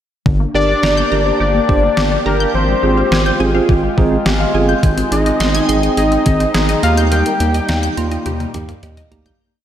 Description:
synth-pop; 105 BPM; 4/4; straight; A4 = 440 Hz
sweeping resonant pad; sustained chords; 0.3-9.4 s; G3 to G4; -20 LUFS; equal; chorus, phaser
resonant blip pluck; arpeggios; 0.3-9.4 s; D3 to Ab6; -23 LUFS; left 1 dB; phaser, diffuse ambient delay
round analog bass; bass; 0.3-9.3 s; G1 to Eb2; -18 LUFS; equal
detuned 8-bit digital drum machine; drums; 0.3-9.4 s; hi-hat, kick drum, snare drum, toms; -20 LUFS; equal; overdrive
fat analog lead; melody; 0.5-8.2 s; Bb4 to G5; -18 LUFS; left 2 dB; chorus, diffuse ambient delay
tine electric piano; accompaniment; 0.5-9.4 s; Bb3 to C6; -20 LUFS; right 3 dB; medium tremolo
wet lush hall reverb, RT60 2.8 s; dreamy mix soaked in reverb; -12 LUFS; side -10 dB against mid
0.3-9.4 pre-chorus
tine electric piano fill 3.7-4.8, 7.7-9.4; fade-out 7.1-9.4; drum fill 8.3-9.4
0.3 Gm; 2.5 Fmadd9/Ab; 4.8 Ab; 6.8 Eb
| 0.26 0.83 1.40 1.97 | 2.54 3.12 3.69 4.26 | 4.83 5.40 5.97 6.54 | 7.12 7.69 8.26 8.83

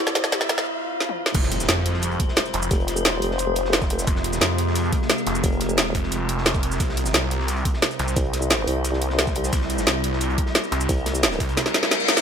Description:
dark technical drum and bass; 176 BPM; 4/4; straight; F harmonic minor; A4 = 440 Hz
metallic inharmonic drone; sustained chords; 0.0-12.2 s; C3 to C5; -27 LUFS; equal; chorus, built-in reverb, phaser, sidechain pumping
riser, swell, impact and reverse cymbal; sound effects; 0.0-2.7, 11.7-12.2 s; -27 LUFS; left 2 dB
drum and bass drum kit; drums; 0.1-12.2 s; crash cymbal, hi-hat, shaker, snare drum, toms; -22 LUFS; equal; overdrive
snarling distorted saw bass; bass; 1.3-11.6 s; F1 to F2; -25 LUFS; equal; distortion, sidechain pumping
crunchy breakbeat drum kit; drums; 1.3-12.2 s; hi-hat, snare drum; -34 LUFS; equal; high-pass filter on hats, high-pass filter on snare, high-pass filter on room
electronic kick drum; drums; 1.3-11.5 s; -24 LUFS; equal; overdrive
vowel-sweep wobble bass; bass; 2.7-5.9, 8.2-11.4 s; F1 to C2; -25 LUFS; equal; chorus
light reverb; high-pass filter; -20 LUFS; side -7 dB against mid
0.0-1.3 A section; 1.3-12.2 B section
build-up 0.0-1.3; drum fill 0.0-0.7, 1.0-1.3, 11.6-12.2; riser 0.0-0.7; break 0.7-1.3; swell 0.7-1.3; drop 1.3-12.2; impact 1.3-2.7; reverse cymbal 11.7-12.2
0.0 C; 1.3 Fm; 6.8 C
0.32 0.66 1.00 | 1.35 1.69 2.03 2.37 | 2.71 3.05 3.39 3.73 | 4.07 4.41 4.75 5.10 | 5.44 5.78 6.12 6.46 | 6.80 7.14 7.48 7.82 | 8.16 8.51 8.85 9.19 | 9.53 9.87 10.21 10.55 | 10.89 11.23 11.57 11.91

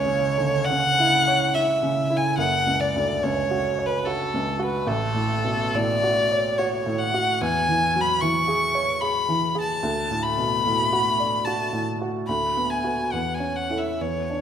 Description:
classical, romantic duo for violin and grand piano; 73 BPM; 3/4; uneven beats, rubato; A4 = 440 Hz
warm violin; melody; 0.0-14.4 s; A4 to C#6; -22 LUFS; left 1 dB
warm baby grand piano; accompaniment; 0.0-14.4 s; F#1 to D5; -25 LUFS; right 1 dB
wet recital hall reverb, RT60 1.8 s; -20 LUFS; side -8 dB against mid
0.0-14.4 A section
0.0 C#madd11; 2.4 F#5; 4.9 F#m/A; 7.4 C#m/E; 9.8 D; 12.3 Bm/D; 13.1 A/E
0.67 1.53 | 2.37 3.22 4.05 | 4.86 5.74 6.57 | 7.40 8.20 9.00 | 9.81 10.64 11.45 | 12.28 13.11 13.99

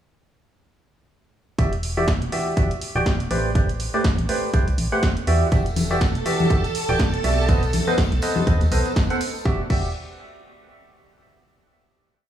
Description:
piano house; 122 BPM; 4/4; swing 57% on 16ths; E minor; A4 = 442 Hz
percussive organ stab; riff; 1.6-9.9 s; E3 to G5; -24 LUFS; right 1 dB; lush chorus, sidechain pumping, digital delay
organ-like FM bass; bass; 1.6-9.9 s; D1 to E2; -23 LUFS; equal; sidechain pumping
electronic kick drum; drums; 1.6-9.8 s; -21 LUFS; equal
punchy analog drum machine; drums; 1.6-9.8 s; crash cymbal, hi-hat, snare drum; -30 LUFS; right 1 dB
string machine, violins; sustained chords; 5.5-9.5 s; A4 to A5; -29 LUFS; right 2 dB; ensemble chorus, sidechain pumping
tambourine and congas; percussion; 5.5-9.4 s; -28 LUFS; left 4 dB
light reverb; small room reverb; -19 LUFS; side -10 dB against mid
1.6-9.5 groove; 9.5-11.4 final chord
1.6 Em9; 3.3 Am11; 5.3 Em9; 7.5 B7b9; 9.5 Em9
| 1.59 2.08 2.57 3.06 | 3.55 4.04 4.54 5.03 | 5.52 6.01 6.50 7.00 | 7.49 7.98 8.47 8.96 | 9.45

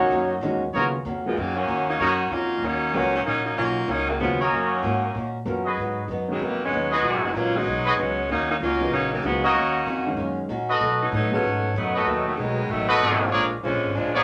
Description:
jazz, big band swing; 191 BPM; 4/4; swing 62% on 8ths; Eb minor; A4 = 438 Hz
warm saxophone section; sustained chords; 0.0-0.7 s; Bb2 to Eb4; -37 LUFS; equal
upright bass; bass; 0.0-14.2 s; Gb1 to B2; -34 LUFS; equal
picked old ladder-braced acoustic guitar; accompaniment; 0.1-14.2 s; Ab2 to Gb4; -33 LUFS; equal
warm grand piano; accompaniment; 0.4-11.4 s; Db3 to F5; -32 LUFS; equal
clear trumpet section; stabs; 0.7-2.1, 4.4-14.2 s; Eb4 to Eb5; -25 LUFS; equal
clear saxophone section; melody; 1.3-14.2 s; Bb2 to A4; -26 LUFS; equal
wet small room reverb, RT60 0.5 s; -24 LUFS; mono
0.7-14.2 A section
0.0 Ebm7; 5.8 Abm7; 8.3 Ebm7; 10.8 B7; 13.3 Bb7#9
0.11 0.43 | 0.74 1.05 1.37 1.68 | 2.00 2.31 2.63 2.94 | 3.25 3.57 3.88 4.20 | 4.51 4.83 5.14 5.46 | 5.77 6.08 6.40 6.71 | 7.03 7.34 7.66 7.97 | 8.29 8.60 8.92 9.23 | 9.54 9.86 10.17 10.49 | 10.80 11.12 11.43 11.75 | 12.06 12.38 12.69 13.00 | 13.32 13.63 13.95

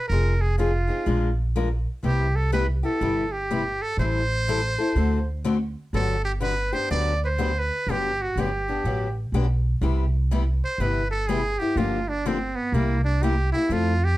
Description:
acoustic string swing (jazz manouche); 123 BPM; 4/4; swing 63% on 8ths; G major, C major from 9.8 s; A4 = 440 Hz
trumpet with metal mute; melody; 0.0-14.2 s; Bb3 to D5; -27 LUFS; right 2 dB
picked steel-string acoustic guitar; accompaniment; 0.1-13.9 s; C3 to Bb4; -26 LUFS; left 4 dB
upright bass; bass; 0.1-14.2 s; F1 to F2; -24 LUFS; equal
light reverb; dark, warm production; -22 LUFS; side -16 dB against mid
0.0-9.8 A section; 9.8-14.2 B section
muted trumpet solo 9.8-14.2
0.1 Fm7; 1.1 Bb7; 2.0 Cmaj7; 4.0 Am7; 5.0 D7; 5.9 Gmaj7; 9.8 Cmaj7; 11.8 Gm7; 12.7 C7
| 0.10 0.59 1.07 1.56 | 2.05 2.53 3.02 3.50 | 3.99 4.48 4.96 5.45 | 5.94 6.42 6.91 7.39 | 7.88 8.37 8.85 9.34 | 9.82 10.31 10.80 11.28 | 11.77 12.25 12.74 13.22 | 13.71

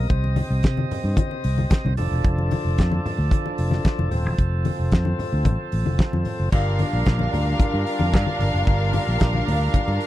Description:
disco; 112 BPM; 4/4; straight; A4 = 441 Hz
overdriven tonewheel organ; sustained chords; 0.0-10.1 s; C3 to Eb5; -29 LUFS; equal; slow rotary speaker
fingered electric bass; bass; 0.0-10.0 s; Eb1 to C3; -22 LUFS; equal
damped 70s drum kit; drums; 0.1-10.1 s; crash cymbal, hi-hat, kick drum, snare drum; -20 LUFS; equal
congas; percussion; 0.1-10.0 s; -29 LUFS; left 4 dB
clear studio string section; second line; 6.5-10.1 s; D4 to F5; -25 LUFS; equal
little or no reverb; dry, close 1970s-style studio recording; -19 LUFS; side -14 dB against mid
0.0-6.5 A section; 6.5-10.1 B section
0.0 Cm; 2.0 F6; 6.5 Gm7
| 0.10 0.63 1.17 1.71 | 2.24 2.78 3.31 3.85 | 4.39 4.92 5.46 6.00 | 6.53 7.07 7.60 8.14 | 8.67 9.21 9.74

